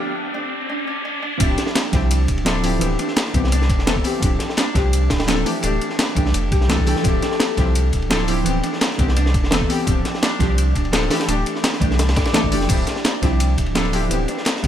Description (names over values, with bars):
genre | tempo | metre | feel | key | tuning
liquid drum and bass | 170 BPM | 4/4 | straight | unclear | A4 = 440 Hz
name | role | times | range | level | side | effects
Celtic harp | arpeggios | 0.0-14.7 s | D4 to D5 | -27 LUFS | equal | ping-pong delay
riser | sound effects | 0.0-1.4 s | none | -27 LUFS | equal | none
deep mellow chord stab | accompaniment | 1.4-14.7 s | E3 to A4 | -23 LUFS | equal | chorus, dub echo
saturated sub bass | bass | 1.4-14.7 s | D1 to C2 | -20 LUFS | equal | none
breakbeat sampler-style drum kit | drums | 1.4-14.7 s | crash cymbal, hi-hat, snare drum | -23 LUFS | equal | studio reverb
crunchy breakbeat drum kit | drums | 1.4-14.7 s | ride cymbal, snare drum | -26 LUFS | equal | high-pass filter on cymbals, studio reverb, high-pass filter on snare, high-pass filter on room
electronic kick drum | drums | 1.4-14.7 s | none | -22 LUFS | equal | high-pass filter on kick, studio reverb
room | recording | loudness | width
light reverb, small room reverb | high-pass filter | -17 LUFS | side -10 dB against mid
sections
0.0-1.4 A section; 1.4-14.7 B section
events
break 0.0-1.4; build-up 0.0-1.4; riser 0.0-1.4; filter sweep on synth stab 0.0-1.4; filter sweep 0.0-1.4; drop 1.4-14.7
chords
0.0 Fmaj13/D; 2.8 Cmaj7/D; 4.2 G7sus4/D; 5.5 Fmaj13/D; 8.5 Cmaj7/D; 9.9 G7sus4/D; 11.1 Fmaj13/D; 14.1 Cmaj7/D